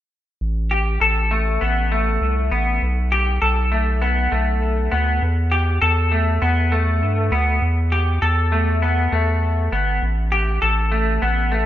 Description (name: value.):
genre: dream pop.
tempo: 100 BPM.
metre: 4/4.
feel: straight.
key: E minor.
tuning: A4 = 441 Hz.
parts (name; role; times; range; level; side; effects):
round analog bass; bass; 0.4-11.7 s; G1 to G2; -19 LUFS; equal; none.
semi-hollow electric guitar; arpeggios; 0.7-11.7 s; A3 to A4; -20 LUFS; left 2 dB; analog chorus, ping-pong delay.
room: moderate lush hall reverb, RT60 2.2 s.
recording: rough home demo mix.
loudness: -17 LUFS.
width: side -12 dB against mid.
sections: 0.4-11.7 A section.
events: none.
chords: 0.4 A7(no3); 2.8 B7(no3); 5.2 Em; 10.0 A7(no3).